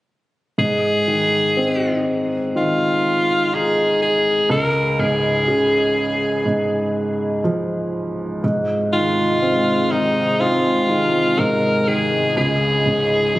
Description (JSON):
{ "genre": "pop ballad", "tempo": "61 BPM", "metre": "4/4", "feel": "straight", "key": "Ab major", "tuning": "A4 = 440 Hz", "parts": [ { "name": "raspy alto saxophone", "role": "melody", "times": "0.6-13.4 s", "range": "Eb4 to Bb4", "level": "-18 LUFS", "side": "left 1 dB", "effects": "none" }, { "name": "felt-muted upright piano", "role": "accompaniment", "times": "0.6-13.4 s", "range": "Db2 to Eb4", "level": "-20 LUFS", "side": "equal", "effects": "none" }, { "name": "lush unison pad", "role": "sustained chords", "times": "8.6-13.4 s", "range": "C3 to F4", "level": "-26 LUFS", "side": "equal", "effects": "chorus" } ], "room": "moderate lush hall reverb, RT60 2.6 s", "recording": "recorded on a phone in the room, club reverb, compression", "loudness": "-16 LUFS", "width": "side -17 dB against mid", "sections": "0.6-8.4 A section; 8.4-13.4 B section", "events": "none", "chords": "0.6 Ab6; 4.5 Db; 8.4 Ab6; 12.4 Db", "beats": "| 0.58 1.57 2.55 3.52 | 4.50 5.47 6.45 7.44 | 8.43 9.42 10.40 11.38 | 12.36 13.34" }